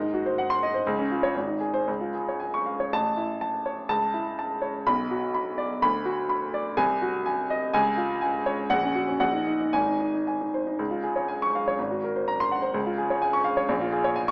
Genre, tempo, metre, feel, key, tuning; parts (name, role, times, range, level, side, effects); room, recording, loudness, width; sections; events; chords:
classical, virtuoso piano study; 110-128 BPM; 2/4; rubato; A major, Db major from 6.8 s; A4 = 441 Hz
warm grand piano; solo; 0.0-14.3 s; Ab1 to Db6; -23 LUFS; equal
wet recital hall reverb, RT60 1.7 s; small speaker sound; -23 LUFS; side -37 dB against mid
0.0-2.9 A section; 2.9-10.8 B section; 10.8-14.3 A section
0.0 Ab7; 0.9 Db; 1.4 Ab; 1.9 Db; 2.9 A; 3.9 A/C#; 4.9 Bm; 5.8 Bm/D; 6.8 Ab7/C; 7.7 Db; 8.7 Gb/Bb; 9.2 Ebm/Bb; 9.7 Ab; 10.8 Db; 11.8 Ab9; 12.7 Db; 13.7 Bbm7